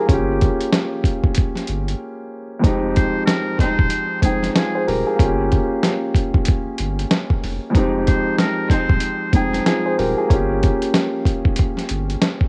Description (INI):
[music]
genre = hip hop, boom-bap hip-hop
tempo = 94 BPM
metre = 4/4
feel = swing 61% on 16ths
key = unclear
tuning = A4 = 438 Hz
[part]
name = dark baby grand piano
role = accompaniment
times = 0.0-12.5 s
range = F2 to G5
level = -24 LUFS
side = equal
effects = high-pass filter, low-pass filter, cassette tape
[part]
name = saturated sub bass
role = bass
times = 0.1-12.2 s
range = Eb1 to G1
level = -28 LUFS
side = equal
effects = none
[part]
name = dusty soul sampler-style drum kit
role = drums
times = 0.1-12.5 s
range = hi-hat, kick drum, snare drum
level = -20 LUFS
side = equal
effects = overdrive, cassette tape
[part]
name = warm studio string section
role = stabs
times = 2.6-3.9, 7.8-9.0 s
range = Ab3 to Eb4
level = -32 LUFS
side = equal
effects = high-pass filter, low-pass filter, cassette tape, analog delay
[part]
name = trumpet with metal mute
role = melody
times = 3.0-9.9 s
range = Ab4 to C5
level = -27 LUFS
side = equal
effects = high-pass filter, low-pass filter, cassette tape
[sound]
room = small room ambience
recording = home recording on cassette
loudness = -19 LUFS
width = mono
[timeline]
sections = 0.0-12.5 A section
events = break 2.0-2.6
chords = 0.1 Gm7b5; 2.6 Fm7; 5.2 Gm7b5; 7.7 Fm7; 10.3 Gm7b5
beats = | 0.09 0.72 1.36 2.00 | 2.64 3.28 3.92 4.55 | 5.19 5.83 6.47 7.11 | 7.75 8.38 9.02 9.66 | 10.30 10.94 11.58 12.21